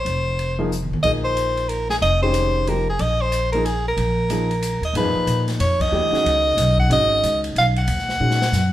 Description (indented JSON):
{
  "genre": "modal jazz",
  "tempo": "184 BPM",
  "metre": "3/4",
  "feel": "swing 62% on 8ths",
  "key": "Bb dorian, G# dorian from 5.0 s",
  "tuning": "A4 = 440 Hz",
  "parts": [
    { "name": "breathy soprano saxophone", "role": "melody", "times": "0.0-8.7 s", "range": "Ab4 to F#5", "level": "-20 LUFS", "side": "equal", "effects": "none" },
    { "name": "upright bass", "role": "bass", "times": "0.1-8.7 s", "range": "F1 to A#2", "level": "-22 LUFS", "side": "equal", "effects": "none" },
    { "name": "open jazz drum kit", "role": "drums", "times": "0.1-8.6 s", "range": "hi-hat, kick drum, ride cymbal, snare drum, toms", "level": "-31 LUFS", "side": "left 1 dB", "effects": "none" },
    { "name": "warm upright piano", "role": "accompaniment", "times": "0.6-8.4 s", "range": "A#2 to Ab4", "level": "-26 LUFS", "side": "left 1 dB", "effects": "none" }
  ],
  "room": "moderate large studio reverb, RT60 1.0 s",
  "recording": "band playing live in one room",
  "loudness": "-17 LUFS",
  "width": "side -13 dB against mid",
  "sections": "0.0-5.0 A section; 5.0-8.7 B section",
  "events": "drum fill 0.7-1.0, 8.2-8.5; band accent 5.8",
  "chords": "0.0 Bb9sus4; 5.0 G#m11"
}